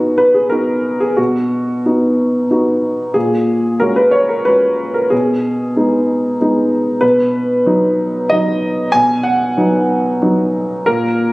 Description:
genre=neoclassical minimalist piano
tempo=92 BPM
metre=3/4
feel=rubato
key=unclear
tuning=A4 = 440 Hz
part: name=warm upright piano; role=solo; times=0.0-11.3 s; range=A#2 to G#5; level=-12 LUFS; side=equal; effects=none
room=light reverb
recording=recorded on a phone in the room, studio reverb, compression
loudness=-12 LUFS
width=side -21 dB against mid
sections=0.0-11.3 A section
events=none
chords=0.0 B; 3.2 F#add9/A#; 5.1 G#m/B; 7.0 B

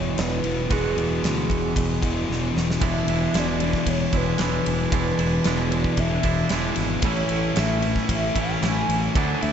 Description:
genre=rock, shoegaze and dream pop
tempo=114 BPM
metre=4/4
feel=straight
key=unclear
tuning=A4 = 440 Hz
part: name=mellow horn-like synth lead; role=melody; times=0.0-9.5 s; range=G#4 to G#5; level=-30 LUFS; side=right 2 dB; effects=chorus, analog delay
part: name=thick fuzz guitar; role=riff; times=0.0-9.5 s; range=E2 to D4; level=-25 LUFS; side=left 6 dB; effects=distortion, analog chorus
part: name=twangy electric guitar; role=riff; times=0.0-9.5 s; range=E2 to F#4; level=-28 LUFS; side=right 9 dB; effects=reverse reverb
part: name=growling fingered electric bass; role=bass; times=0.0-9.5 s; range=E1 to D2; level=-28 LUFS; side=equal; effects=overdrive
part: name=huge arena drum kit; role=drums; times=0.2-9.5 s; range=kick drum, ride cymbal, snare drum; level=-27 LUFS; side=equal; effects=none
room=wet plate reverb, RT60 1.7 s, small room ambience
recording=dreamy mix soaked in reverb, nothing above 7.9 kHz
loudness=-20 LUFS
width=side -8 dB against mid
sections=0.0-2.8 A section; 2.8-9.5 B section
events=drum fill 2.3-2.8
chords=0.0 Eadd9; 2.8 E7; 7.0 A

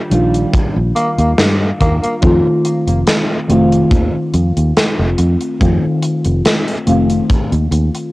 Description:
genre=vaporwave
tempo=71 BPM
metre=4/4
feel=swing 53% on 16ths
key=unclear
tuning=A4 = 440 Hz
part: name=mellow FM electric piano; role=accompaniment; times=0.0-8.1 s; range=Eb3 to F4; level=-16 LUFS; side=left 1 dB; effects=phaser, lush chorus, vintage 12-bit sampler grit, cassette tape, tape echo
part: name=fingered electric bass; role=bass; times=0.1-7.9 s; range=F1 to G2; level=-15 LUFS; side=equal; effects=none
part: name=gated 80s drum kit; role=drums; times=0.1-8.1 s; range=hi-hat, snare drum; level=-16 LUFS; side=equal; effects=cassette tape
part: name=kick drum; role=drums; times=0.5-7.5 s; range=none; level=-15 LUFS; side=equal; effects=cassette tape
part: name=growling alto saxophone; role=melody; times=1.0-2.2 s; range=Bb3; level=-21 LUFS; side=equal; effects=tape echo
room=light reverb, small room ambience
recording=home recording on cassette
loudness=-12 LUFS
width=side -20 dB against mid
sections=0.0-8.1 A section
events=none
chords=0.0 Ebmaj9; 2.2 F7

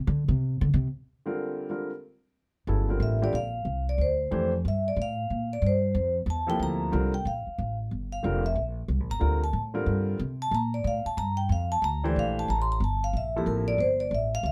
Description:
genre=modal jazz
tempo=184 BPM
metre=4/4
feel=swing 64% on 8ths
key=G dorian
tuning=A4 = 439 Hz
part: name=upright bass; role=bass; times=0.0-14.5 s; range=F1 to D3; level=-30 LUFS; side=equal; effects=none
part: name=warm grand piano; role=accompaniment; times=1.3-13.8 s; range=C3 to C5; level=-33 LUFS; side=equal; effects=none
part: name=vibraphone with medium mallets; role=melody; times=3.0-14.5 s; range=G4 to C6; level=-32 LUFS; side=equal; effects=none
room=light reverb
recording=none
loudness=-28 LUFS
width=mono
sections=0.0-2.7 A section; 2.7-14.5 A section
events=upright bass solo 0.0-2.7; vibraphone solo 2.7-14.5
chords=0.0 Gm11

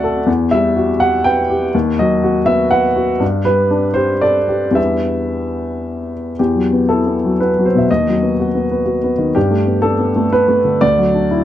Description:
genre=neoclassical minimalist piano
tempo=122 BPM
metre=3/4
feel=rubato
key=E minor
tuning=A4 = 440 Hz
part: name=warm upright piano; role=solo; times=0.0-11.4 s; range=D2 to G5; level=-13 LUFS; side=equal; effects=none
room=moderate studio reverb, RT60 0.5 s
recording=dark, warm production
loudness=-13 LUFS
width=side -12 dB against mid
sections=0.0-6.4 A section; 6.4-11.4 B section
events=none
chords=0.3 Emadd9; 1.7 B/D#; 3.2 Gadd9; 4.8 Em7; 6.4 Emadd9; 7.9 B/D#; 9.4 Gadd9; 10.8 Dadd9

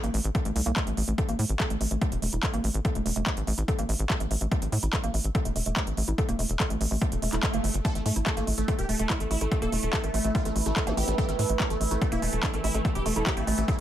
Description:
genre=psychedelic trance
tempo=144 BPM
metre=4/4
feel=straight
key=unclear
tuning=A4 = 435 Hz
part: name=woody wave-folded pluck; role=riff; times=0.0-13.7 s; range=A3 to Bb4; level=-34 LUFS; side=right 1 dB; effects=chorus, auto-pan, cassette tape, sidechain pumping, dub echo
part: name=tight sequencer bass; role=bass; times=0.0-13.6 s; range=E1 to A2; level=-28 LUFS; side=equal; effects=none
part: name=big-room dance drum kit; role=drums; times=0.0-13.8 s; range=handclaps, hi-hat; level=-32 LUFS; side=equal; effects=none
part: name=electronic kick drum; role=drums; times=0.3-13.8 s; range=none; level=-29 LUFS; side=equal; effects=overdrive
part: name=swell and zap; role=sound effects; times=7.1-7.8, 10.9-11.0 s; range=none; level=-35 LUFS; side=right 2 dB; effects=none
part: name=supersaw stab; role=melody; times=7.8-13.8 s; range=A3 to A4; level=-32 LUFS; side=right 1 dB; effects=phaser, sidechain pumping, dub echo
part: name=overtone-sweeping drone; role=sustained chords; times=8.1-13.8 s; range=E3 to E4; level=-35 LUFS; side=right 3 dB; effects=chorus, built-in reverb, sidechain pumping
room=little or no reverb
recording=none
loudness=-24 LUFS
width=side -12 dB against mid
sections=0.0-13.8 A section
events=filter sweep on synth arpeggio sound 0.0-13.8; swell 7.1-7.8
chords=0.0 A5

